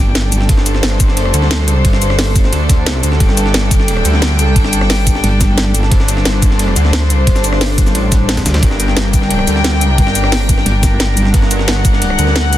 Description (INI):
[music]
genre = dark technical drum and bass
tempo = 177 BPM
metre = 4/4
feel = straight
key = G harmonic minor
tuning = A4 = 440 Hz
[part]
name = clear studio string section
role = sustained chords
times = 0.0-12.6 s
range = G3 to G5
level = -17 LUFS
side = left 1 dB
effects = vintage 12-bit sampler grit, sidechain pumping
[part]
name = metallic wobble bass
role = bass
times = 0.0-0.5, 5.2-5.9, 8.5-8.6, 10.7-11.3 s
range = G1 to D2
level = -13 LUFS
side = equal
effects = chorus, tube saturation
[part]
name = breakbeat sampler-style drum kit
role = drums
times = 0.2-12.6 s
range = hi-hat, ride cymbal, snare drum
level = -24 LUFS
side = equal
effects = high-pass filter on cymbals, high-pass filter on snare, high-pass filter on hats
[part]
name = drum and bass drum kit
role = drums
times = 0.2-12.6 s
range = hi-hat, rim click, shaker, snare drum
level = -18 LUFS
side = equal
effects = none
[part]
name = wide detuned saw bass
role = bass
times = 0.5-12.6 s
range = G1 to D2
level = -14 LUFS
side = equal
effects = chorus
[part]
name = electronic kick drum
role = drums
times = 0.5-11.9 s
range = none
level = -13 LUFS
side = equal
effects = none
[sound]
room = little or no reverb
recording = dense, heavily limited modern master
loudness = -10 LUFS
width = side -13 dB against mid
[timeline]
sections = 0.0-12.6 A section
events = none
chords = 0.0 G5